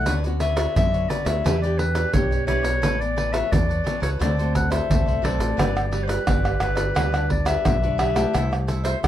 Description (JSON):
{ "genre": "samba and choro", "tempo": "87 BPM", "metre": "4/4", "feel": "straight", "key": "D major, G major from 5.6 s", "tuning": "A4 = 440 Hz", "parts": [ { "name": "warm clarinet", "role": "melody", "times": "0.0-9.0 s", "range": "B4 to F#5", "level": "-26 LUFS", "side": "left 2 dB", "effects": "none" }, { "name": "cavaquinho", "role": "accompaniment", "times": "0.0-9.1 s", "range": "D4 to A5", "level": "-32 LUFS", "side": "right 2 dB", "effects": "none" }, { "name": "nylon-string guitar", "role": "accompaniment", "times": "0.0-9.1 s", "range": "A2 to B4", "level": "-30 LUFS", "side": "left 2 dB", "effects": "none" }, { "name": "mellow fretless electric bass", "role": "bass", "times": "0.0-9.1 s", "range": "G1 to F#2", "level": "-24 LUFS", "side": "equal", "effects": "none" }, { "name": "egg shaker, surdo, pandeiro and tamborim", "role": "percussion", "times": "0.1-9.1 s", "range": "none", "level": "-24 LUFS", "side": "right 1 dB", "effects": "none" } ], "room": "light reverb", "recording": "none", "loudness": "-19 LUFS", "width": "side -12 dB against mid", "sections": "0.0-5.6 A section; 5.6-9.1 B section", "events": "none", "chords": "0.1 Bmadd9/D; 1.4 Em7; 2.8 Aadd9; 4.2 D7; 5.6 Gmaj7; 8.3 C6", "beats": "| 0.07 0.76 1.45 2.14 | 2.83 3.52 4.21 4.89 | 5.58 6.28 6.97 7.66 | 8.35 9.04" }